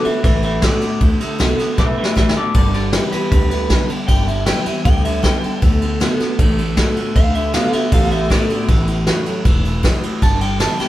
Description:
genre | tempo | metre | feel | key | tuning
rockabilly | 156 BPM | 4/4 | straight | D major | A4 = 439 Hz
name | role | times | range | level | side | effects
electric guitar through a small old amp | melody | 0.0-10.9 s | G4 to A5 | -22 LUFS | equal | none
picked steel-string acoustic guitar | accompaniment | 0.0-10.9 s | A2 to F#4 | -25 LUFS | left 3 dB | none
electric guitar through a small old amp | riff | 0.0-10.9 s | G2 to B3 | -23 LUFS | right 1 dB | none
upright bass | bass | 0.0-10.8 s | E1 to D2 | -20 LUFS | equal | none
vintage brush drum kit | drums | 0.0-10.9 s | kick drum, ride cymbal, snare drum | -17 LUFS | equal | none
room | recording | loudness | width
moderate stone room reverb, RT60 1.0 s | band playing live in one room | -14 LUFS | side -14 dB against mid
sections
0.0-10.9 A section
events
clean electric guitar solo 0.0-10.9; drum fill 1.8-2.5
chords
0.0 D6; 2.5 G6; 5.6 D6; 8.7 A6; 10.2 G6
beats
0.24 0.63 | 1.01 1.40 1.78 2.17 | 2.55 2.93 3.32 3.70 | 4.09 4.47 4.85 5.24 | 5.62 6.01 6.39 6.77 | 7.16 7.54 7.92 8.31 | 8.69 9.07 9.46 9.84 | 10.22 10.61

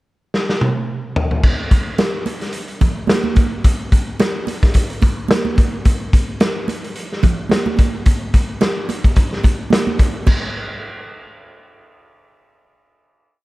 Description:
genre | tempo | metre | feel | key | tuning
funk | 109 BPM | 4/4 | swing 56% on 16ths | none | none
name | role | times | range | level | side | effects
raw garage drum kit | drums | 0.3-10.4 s | crash cymbal, hi-hat, kick drum, snare drum, toms | -15 LUFS | equal | none
congas | percussion | 2.0-10.5 s | none | -22 LUFS | right 5 dB | none
room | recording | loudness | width
little or no reverb | dark, warm production | -15 LUFS | side -19 dB against mid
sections
0.0-1.4 pickup bar; 1.4-10.3 breakdown; 10.3-12.5 final hit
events
drum fill 0.3-1.4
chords
none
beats
0.33 0.88 | 1.44 1.99 2.54 3.09 | 3.65 4.20 4.75 5.30 | 5.86 6.41 6.96 7.51 | 8.06 8.62 9.17 9.72 | 10.27

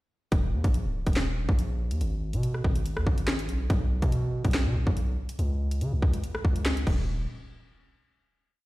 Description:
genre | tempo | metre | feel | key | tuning
hip hop, drill | 142 BPM | 4/4 | half-time | unclear | A4 = 441 Hz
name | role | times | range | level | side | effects
long sustained 808-style bass | bass | 0.3-7.3 s | Db1 to Db3 | -27 LUFS | equal | none
drill drum kit | drums | 0.3-7.0 s | crash cymbal, handclaps, hi-hat, kick drum, rim click, snare drum | -26 LUFS | equal | overdrive
room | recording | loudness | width
little or no reverb | played on a big sound system in a bare room, stone room reverb | -25 LUFS | side -18 dB against mid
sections
0.3-7.1 hook; 7.1-8.7 final hit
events
none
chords
none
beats
| 0.32 0.74 1.16 1.59 | 2.01 2.43 2.85 3.28 | 3.70 4.12 4.54 4.97 | 5.39 5.81 6.23 6.66 | 7.08

